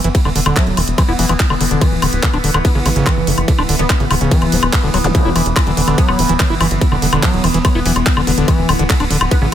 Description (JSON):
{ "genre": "psychedelic trance", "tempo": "144 BPM", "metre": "4/4", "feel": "straight", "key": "unclear", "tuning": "A4 = 440 Hz", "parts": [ { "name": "overtone-sweeping drone", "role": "sustained chords", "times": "0.0-9.5 s", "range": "E3 to B3", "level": "-20 LUFS", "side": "left 1 dB", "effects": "chorus, built-in reverb, sidechain pumping" }, { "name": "overdriven acid bass", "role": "riff", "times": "0.0-9.5 s", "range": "C#3 to E4", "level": "-19 LUFS", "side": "moving between left 5 dB and right 5 dB", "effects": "distortion, auto-pan, sidechain pumping, digital delay" }, { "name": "tight sequencer bass", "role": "bass", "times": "0.0-9.5 s", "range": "D1 to A1", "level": "-18 LUFS", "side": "equal", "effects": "none" }, { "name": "garage drum kit", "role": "drums", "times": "0.0-9.4 s", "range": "handclaps, hi-hat, ride cymbal, woodblock", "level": "-19 LUFS", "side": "left 1 dB", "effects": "none" }, { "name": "electronic kick drum", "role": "drums", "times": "0.1-9.4 s", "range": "none", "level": "-14 LUFS", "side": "equal", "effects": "none" }, { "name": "resonant blip pluck", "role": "second line", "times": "0.6-9.5 s", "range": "A3 to B3", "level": "-27 LUFS", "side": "left 2 dB", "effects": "phaser, sidechain pumping, high-pass filter, digital delay" }, { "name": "zap", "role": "sound effects", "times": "5.0-5.1 s", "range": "none", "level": "-23 LUFS", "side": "equal", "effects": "none" } ], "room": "light reverb", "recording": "none", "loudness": "-12 LUFS", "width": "side -10 dB against mid", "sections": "0.0-9.5 A section", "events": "none", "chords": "0.0 E5; 1.8 D5; 5.1 E5; 8.5 D5", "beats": "| 0.15 0.56 0.98 1.40 | 1.81 2.23 2.65 3.06 | 3.48 3.90 4.31 4.73 | 5.15 5.56 5.98 6.40 | 6.81 7.23 7.65 8.06 | 8.48 8.90 9.31" }